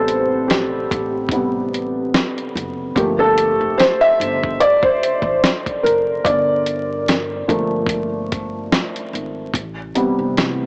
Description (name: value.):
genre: lo-fi hip hop.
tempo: 73 BPM.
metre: 4/4.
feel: swing 56% on 16ths.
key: unclear.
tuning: A4 = 439 Hz.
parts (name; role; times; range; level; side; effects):
felt-muted upright piano; accompaniment; 0.0-10.7 s; C3 to E5; -20 LUFS; equal; cassette tape.
upright bass; bass; 0.0-10.3 s; F1 to A1; -32 LUFS; equal; transformer saturation.
dusty soul sampler-style drum kit; drums; 0.1-10.6 s; hi-hat, kick drum, snare drum; -22 LUFS; equal; cassette tape.
deep dark ambient pad; sustained chords; 10.1-10.7 s; C3 to E4; -32 LUFS; equal; chorus, built-in reverb, cassette tape.
room: moderate spring reverb, RT60 2.3 s.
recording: home recording on cassette, vinyl crackle, small speaker sound.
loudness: -19 LUFS.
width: mono.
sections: 0.0-10.7 A section.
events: felt piano solo 0.0-10.7.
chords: 0.0 Am9; 3.0 Gm9; 9.5 Am9.